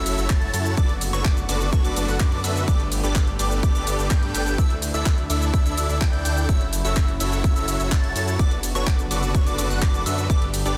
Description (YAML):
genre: EDM, festival progressive house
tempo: 126 BPM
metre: 4/4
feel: straight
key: B minor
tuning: A4 = 440 Hz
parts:
  - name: warm studio string section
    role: sustained chords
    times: 0.0-10.8 s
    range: C#3 to G4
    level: -35 LUFS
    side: equal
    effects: sidechain pumping
  - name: plucky unison lead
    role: arpeggios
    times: 0.0-10.8 s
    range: C#6 to A6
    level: -33 LUFS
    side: equal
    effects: phaser, sidechain pumping, tape echo
  - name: supersaw chords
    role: riff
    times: 0.0-10.8 s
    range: D4 to A5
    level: -30 LUFS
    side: equal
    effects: sidechain pumping, tape echo
  - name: detuned saw bass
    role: bass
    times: 0.0-10.8 s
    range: F#1 to G2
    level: -28 LUFS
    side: equal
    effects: chorus, sidechain pumping
  - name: house drum kit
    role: drums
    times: 0.1-10.8 s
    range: handclaps, hi-hat, shaker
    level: -32 LUFS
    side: equal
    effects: soft clipping on snare
  - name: electronic kick drum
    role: drums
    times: 0.3-10.4 s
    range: none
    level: -23 LUFS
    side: equal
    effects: none
room: digital ambience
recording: dense, heavily limited modern master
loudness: -22 LUFS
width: mono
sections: 0.0-10.8 A section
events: none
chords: 0.0 F#m7; 0.8 Bm7/F#; 2.7 Gadd9; 4.6 Dsus2; 6.5 F#m7; 8.4 Bm7/F#